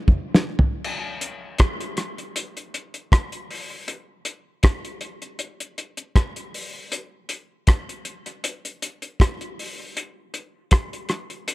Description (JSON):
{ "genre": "reggae", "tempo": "79 BPM", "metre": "4/4", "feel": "straight", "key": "none", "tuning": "none", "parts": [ { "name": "cloth-damped thuddy drum kit", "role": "drums", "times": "0.1-11.5 s", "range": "crash cymbal, hi-hat, kick drum, rim click, snare drum, toms", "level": "-20 LUFS", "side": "equal", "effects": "none" } ], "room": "little or no reverb", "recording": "dry, close 1970s-style studio recording", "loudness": "-22 LUFS", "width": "side -19 dB against mid", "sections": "0.8-11.5 A section", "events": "drum fill 0.0-0.8", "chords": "none" }